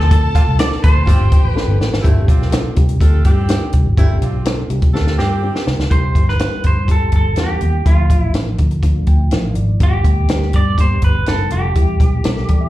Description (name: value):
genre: uptempo 1960s-style soul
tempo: 124 BPM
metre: 4/4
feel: straight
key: unclear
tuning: A4 = 441 Hz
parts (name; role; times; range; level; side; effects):
- electric guitar through a small old amp; melody; 0.0-1.8, 5.9-12.7 s; F4 to D5; -22 LUFS; right 1 dB; slapback echo
- rich studio string section; second line; 0.0-2.0 s; G4 to A5; -29 LUFS; left 2 dB; slapback echo
- mellow reed electric piano; accompaniment; 0.0-12.7 s; F3 to G5; -25 LUFS; left 3 dB; fast tremolo, slapback echo
- vintage muted fingered electric bass; bass; 0.0-12.7 s; F1 to E3; -16 LUFS; equal; none
- compact cocktail drum kit; drums; 0.0-12.6 s; hi-hat, kick drum, snare drum; -15 LUFS; equal; none
- bright saxophone section; second line; 0.3-5.6 s; A3 to A4; -26 LUFS; right 3 dB; slapback echo
room: little or no reverb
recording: live gig heard through the venue's PA, club reverb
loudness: -12 LUFS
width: side -15 dB against mid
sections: 0.0-2.0 A section; 2.0-5.9 B section; 5.9-12.7 C section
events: drum fill 1.6-2.0, 4.9-5.9; reed electric piano fill 8.8-9.8, 12.2-12.7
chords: 0.0 Dm7; 1.1 G7sus4; 5.9 C; 7.9 Dm; 9.8 G; 11.8 Em